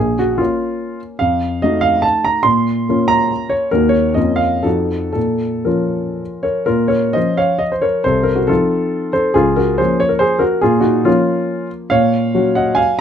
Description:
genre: classical, romantic triple-time dance for piano with dotted rhythms.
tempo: 108-156 BPM.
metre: 3/4.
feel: rubato.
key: Bb minor.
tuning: A4 = 440 Hz.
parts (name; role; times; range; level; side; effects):
warm grand piano; solo; 0.0-13.0 s; Bb1 to C6; -14 LUFS; equal; none.
room: light reverb.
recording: close, detailed microphones.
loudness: -13 LUFS.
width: side -8 dB against mid.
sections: 0.0-6.7 A section; 6.7-13.0 A section.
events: none.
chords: 0.0 Bbm; 1.2 F7b9; 2.4 Bbm; 3.7 Ebm; 4.2 Bbm/F; 4.7 F7b9; 5.2 Bbm; 8.1 F7/C; 9.4 Bbm/Db; 10.6 Bbm.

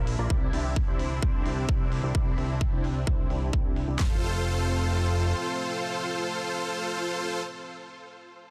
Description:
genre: EDM, festival progressive house.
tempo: 130 BPM.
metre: 4/4.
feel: straight.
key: F major.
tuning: A4 = 440 Hz.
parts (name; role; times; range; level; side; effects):
lush unison pad; sustained chords; 0.0-7.4 s; A3 to F4; -40 LUFS; equal; chorus, phaser, sidechain pumping.
fat analog bass; bass; 0.0-5.3 s; F1 to C2; -31 LUFS; equal; sidechain pumping.
electronic hi-hat; drums; 0.1-3.9 s; none; -49 LUFS; equal; low-pass filter on hats.
dense compressed supersaw; riff; 0.2-7.4 s; C4 to E5; -34 LUFS; equal; sidechain pumping, low-pass filter, tape echo.
big-room dance drum kit; drums; 0.3-4.1 s; handclaps, kick drum, snare drum; -29 LUFS; equal; none.
room: light reverb, digital ambience.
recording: dense, heavily limited modern master.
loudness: -28 LUFS.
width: mono.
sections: 0.0-4.0 A section; 4.0-7.7 B section.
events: none.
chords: 0.3 Cadd9; 4.0 F.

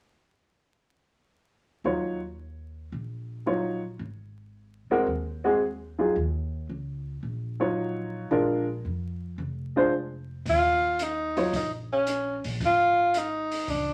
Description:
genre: jazz, small-group swing and bop.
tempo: 112 BPM.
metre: 4/4.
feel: swing 69% on 8ths.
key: Eb dorian, Eb minor from 10.5 s.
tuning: A4 = 441 Hz.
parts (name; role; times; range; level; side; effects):
warm upright piano; accompaniment; 1.8-11.5 s; Gb3 to Db5; -27 LUFS; equal; none.
upright bass; bass; 1.8-13.9 s; F1 to F2; -38 LUFS; equal; none.
breathy tenor saxophone; melody; 10.5-13.9 s; Db4 to F4; -26 LUFS; equal; none.
open jazz drum kit; drums; 10.5-13.9 s; hi-hat, kick drum; -40 LUFS; equal; none.
room: moderate studio reverb, RT60 0.6 s.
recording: vinyl crackle.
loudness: -28 LUFS.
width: mono.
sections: 1.9-10.5 A section; 10.5-13.9 B section.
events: none.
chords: 1.9 Ebm9; 4.0 Ab7; 6.2 Ebm9; 8.3 Bb7; 10.5 Eb7sus2; 12.6 Ab5.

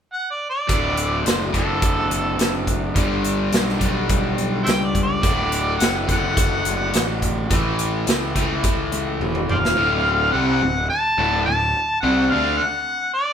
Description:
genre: blues rock power trio and southern rock.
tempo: 106 BPM.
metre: 4/4.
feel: straight.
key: D mixolydian.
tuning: A4 = 440 Hz.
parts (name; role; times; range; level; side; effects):
warm harmonica; melody; 0.1-13.3 s; A4 to A5; -22 LUFS; equal; overdrive.
raw garage guitar; riff; 0.7-12.6 s; D2 to D4; -22 LUFS; left 1 dB; overdrive, spring reverb.
fuzz picked electric bass; bass; 0.7-12.6 s; D1 to D2; -26 LUFS; equal; overdrive.
big rock drum kit; drums; 0.7-9.8 s; hi-hat, kick drum, snare drum, toms; -22 LUFS; equal; none.
room: wet large studio reverb, RT60 1.2 s.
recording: band playing live in one room.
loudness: -18 LUFS.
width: side -8 dB against mid.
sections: 0.7-9.8 A section; 9.8-13.3 B section.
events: drum fill 9.2-9.8.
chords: 0.0 N.C.; 0.7 D; 3.0 G; 5.2 D; 7.5 A; 9.8 D7.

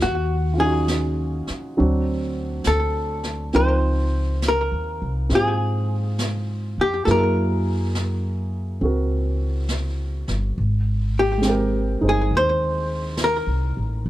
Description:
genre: jazz ballad.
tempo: 68 BPM.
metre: 4/4.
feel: swing 66% on 8ths.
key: Ab major.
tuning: A4 = 441 Hz.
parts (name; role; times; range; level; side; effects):
archtop guitar, miked and amplified; melody; 0.0-14.1 s; Gb4 to C5; -23 LUFS; left 1 dB; slapback echo.
warm baby grand piano; accompaniment; 0.0-14.1 s; F3 to G5; -26 LUFS; right 2 dB; none.
upright bass; bass; 0.0-14.1 s; G1 to Ab2; -23 LUFS; equal; none.
jazz brush drum kit; drums; 0.0-14.1 s; brushed snare drum, hi-hat, snare drum; -32 LUFS; right 1 dB; none.
room: studio ambience.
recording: none.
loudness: -20 LUFS.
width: side -14 dB against mid.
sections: 0.0-14.1 A section.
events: none.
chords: 0.0 Ebm9; 1.8 D7#11; 3.5 Dbmaj9#11; 7.1 Gb9; 10.6 Abmaj9.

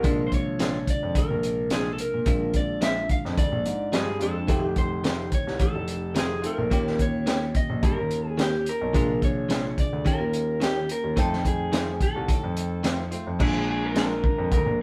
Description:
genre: straight-eighth soul blues.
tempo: 108 BPM.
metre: 4/4.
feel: straight.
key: Bb mixolydian.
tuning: A4 = 440 Hz.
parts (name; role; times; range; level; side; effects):
electric guitar through a small old amp; melody; 0.0-14.8 s; G4 to F5; -32 LUFS; equal; none.
bell-like tine electric piano; accompaniment; 0.0-14.8 s; C3 to G5; -34 LUFS; equal; none.
direct-recorded clean electric guitar; stabs; 0.0-14.1 s; Eb3 to G4; -34 LUFS; equal; none.
warm grand piano; bass; 0.0-14.8 s; F1 to Bb2; -32 LUFS; equal; none.
crunchy breakbeat drum kit; drums; 0.0-14.7 s; crash cymbal, hi-hat, kick drum, snare drum; -28 LUFS; equal; none.
room: moderate studio reverb, RT60 0.6 s.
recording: band playing live in one room.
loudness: -25 LUFS.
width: mono.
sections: 0.0-13.4 A section; 13.4-14.8 B section.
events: clean electric guitar solo 13.4-14.8.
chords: 0.0 Bb7; 4.5 F7; 6.7 Eb7; 8.9 Bb7; 10.1 Eb7; 11.2 F7; 13.4 Bb7.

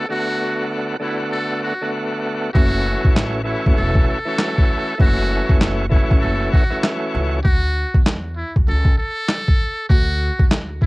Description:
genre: hip hop, boom-bap hip-hop.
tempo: 98 BPM.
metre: 4/4.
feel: swing 62% on 16ths.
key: F# minor.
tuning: A4 = 441 Hz.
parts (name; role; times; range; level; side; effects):
trumpet with metal mute; melody; 0.0-10.9 s; E4 to A4; -25 LUFS; equal; high-pass filter, low-pass filter, cassette tape.
bright tonewheel organ; accompaniment; 0.0-7.4 s; D3 to F#4; -22 LUFS; equal; overdrive, fast rotary speaker, cassette tape, high-pass filter, low-pass filter.
boom bap sampler-style drum kit; drums; 2.5-10.9 s; handclaps, kick drum, snare drum; -16 LUFS; equal; cassette tape.
upright bass; bass; 2.6-10.9 s; E1 to E2; -22 LUFS; equal; none.
room: little or no reverb.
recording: home recording on cassette.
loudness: -16 LUFS.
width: side -22 dB against mid.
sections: 0.0-2.5 A section; 2.5-10.9 B section.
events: hi-hats muted 2.5-10.9.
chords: 0.0 D6; 2.5 F#m7; 7.4 D.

